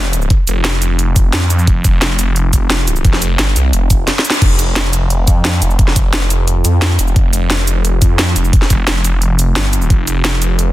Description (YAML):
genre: dark technical drum and bass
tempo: 175 BPM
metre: 4/4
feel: straight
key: unclear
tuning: A4 = 439 Hz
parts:
  - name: phased detuned saw bass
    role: bass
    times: 0.0-10.7 s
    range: F1 to F2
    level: -14 LUFS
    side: equal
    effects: phaser, overdrive, sidechain pumping
  - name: drum and bass drum kit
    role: drums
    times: 0.1-10.7 s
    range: cabasa, crash cymbal, hi-hat, snare drum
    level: -16 LUFS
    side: equal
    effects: overdrive
  - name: electronic kick drum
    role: drums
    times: 0.3-10.0 s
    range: none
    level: -11 LUFS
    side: equal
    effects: overdrive
room: little or no reverb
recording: dense, heavily limited modern master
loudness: -11 LUFS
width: side -16 dB against mid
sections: 0.0-4.4 A section; 4.4-10.7 A section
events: drop 0.0-4.4, 4.4-10.7; drum fill 4.1-4.4; band accent 4.3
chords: none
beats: | 0.30 0.65 0.99 1.33 | 1.68 2.02 2.36 2.70 | 3.05 3.39 3.73 4.08 | 4.42 4.76 5.10 5.45 | 5.79 6.13 6.47 6.82 | 7.16 7.50 7.85 8.19 | 8.53 8.88 9.22 9.56 | 9.90 10.25 10.59